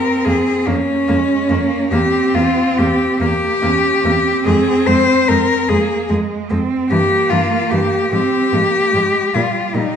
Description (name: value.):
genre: classical, lyrical piece for cello ensemble.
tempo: 49 BPM (dotted quarters).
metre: 6/8.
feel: rubato.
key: F minor.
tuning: A4 = 440 Hz.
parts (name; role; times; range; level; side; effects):
rich cello; melody; 0.0-10.0 s; Db4 to C5; -16 LUFS; left 2 dB; none.
rich cello; second line; 0.0-10.0 s; G3 to Db4; -19 LUFS; right 3 dB; none.
rich cello; accompaniment; 0.3-9.8 s; E3 to Bb3; -23 LUFS; left 1 dB; none.
warm cello; bass; 0.3-9.8 s; E2 to Bb2; -22 LUFS; right 2 dB; none.
room: wet scoring stage reverb, RT60 1.7 s.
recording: recorded in a church or concert hall, nothing above 10.3 kHz.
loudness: -13 LUFS.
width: side -8 dB against mid.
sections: 0.0-10.0 A section.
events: none.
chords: 0.0 Bbm9/F; 1.9 C7/E; 4.5 Fm; 6.9 Gm6; 8.1 Fm/Ab; 9.3 Ebadd9/Bb.